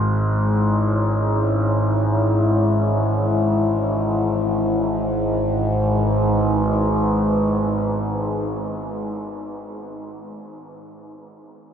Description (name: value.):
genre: dark ambient drone.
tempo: free time.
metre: none.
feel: none.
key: G# minor.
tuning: A4 = 445 Hz.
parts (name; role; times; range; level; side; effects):
deep dark ambient pad; sustained chords; 0.0-9.3 s; G#3 to C#5; -23 LUFS; equal; chorus, built-in reverb.
overtone-sweeping drone; drone; 0.0-9.0 s; G#1 to G#2; -20 LUFS; equal; chorus, built-in reverb.
room: wet huge ambient reverb, RT60 9.7 s.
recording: in a vast, echoing space.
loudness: -18 LUFS.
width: side -8 dB against mid.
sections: 0.0-4.9 A section; 4.9-9.3 B section.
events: none.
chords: 0.0 C#m/G#; 4.9 G#m.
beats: free time.